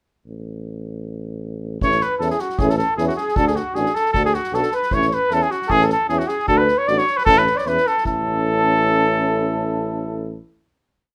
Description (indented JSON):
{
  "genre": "balkan folk, Balkan brass band",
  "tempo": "154 BPM",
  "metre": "2/4",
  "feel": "swing 54% on 16ths",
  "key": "A major",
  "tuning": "A4 = 442 Hz",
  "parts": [
    { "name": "mellow tuba", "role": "bass", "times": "0.3-10.4 s", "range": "A1 to E2", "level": "-27 LUFS", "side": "equal", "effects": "none" },
    { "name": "warm cornet", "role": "melody", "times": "1.8-10.4 s", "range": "F#4 to D5", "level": "-22 LUFS", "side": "equal", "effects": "none" },
    { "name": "dark trumpet", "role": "second line", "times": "1.8-10.4 s", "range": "F#4 to D5", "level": "-27 LUFS", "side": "equal", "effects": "none" },
    { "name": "warm French horn", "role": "accompaniment", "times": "1.8-10.4 s", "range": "E4 to F#4", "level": "-30 LUFS", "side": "equal", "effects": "none" },
    { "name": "warm euphonium", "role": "accompaniment", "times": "1.8-10.4 s", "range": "C#4 to D4", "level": "-30 LUFS", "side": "equal", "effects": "none" },
    { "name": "soft-mallet drum kit", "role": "percussion", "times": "1.8-8.2 s", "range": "kick drum, snare drum", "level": "-31 LUFS", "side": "equal", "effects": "none" }
  ],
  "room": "moderate small room reverb, RT60 0.5 s",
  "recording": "none",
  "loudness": "-19 LUFS",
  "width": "mono",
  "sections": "0.3-1.8 intro; 1.8-8.1 A section; 8.1-9.6 final chord",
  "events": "none",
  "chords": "0.3 N.C.; 1.8 A; 3.4 D; 4.9 A; 6.5 D; 7.3 A"
}